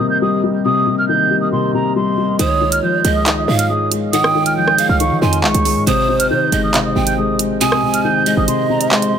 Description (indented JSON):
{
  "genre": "hip hop, drill",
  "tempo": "138 BPM",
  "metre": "4/4",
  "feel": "half-time",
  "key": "unclear",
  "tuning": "A4 = 440 Hz",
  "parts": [
    { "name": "breathy concert flute", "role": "melody", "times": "0.0-9.2 s", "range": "Bb5 to G6", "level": "-18 LUFS", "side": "right 2 dB", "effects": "low-pass filter, tape echo" },
    { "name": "dark concert grand piano", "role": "accompaniment", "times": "0.0-9.2 s", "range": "C3 to Ab3", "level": "-18 LUFS", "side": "left 5 dB", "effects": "low-pass filter" },
    { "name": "glass harmonica", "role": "sustained chords", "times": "0.0-9.2 s", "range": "Ab3 to Eb5", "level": "-24 LUFS", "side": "right 2 dB", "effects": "none" },
    { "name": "breathy mellow pan flute", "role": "second line", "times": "2.4-9.2 s", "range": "C5 to Ab5", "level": "-21 LUFS", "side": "right 6 dB", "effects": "tape echo" },
    { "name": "short 808-style bass", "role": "bass", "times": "2.4-8.5 s", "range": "G1 to F3", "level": "-20 LUFS", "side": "right 2 dB", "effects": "none" },
    { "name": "drill drum kit", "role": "drums", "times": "2.4-9.1 s", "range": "handclaps, hi-hat, rim click", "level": "-18 LUFS", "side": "right 2 dB", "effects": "none" }
  ],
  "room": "studio reverb",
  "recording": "none",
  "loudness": "-13 LUFS",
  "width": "side -8 dB against mid",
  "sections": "0.0-9.2 A section",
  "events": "kick muted 8.5-9.2",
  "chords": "0.0 Cm7; 2.4 Dbadd9; 5.9 Ab"
}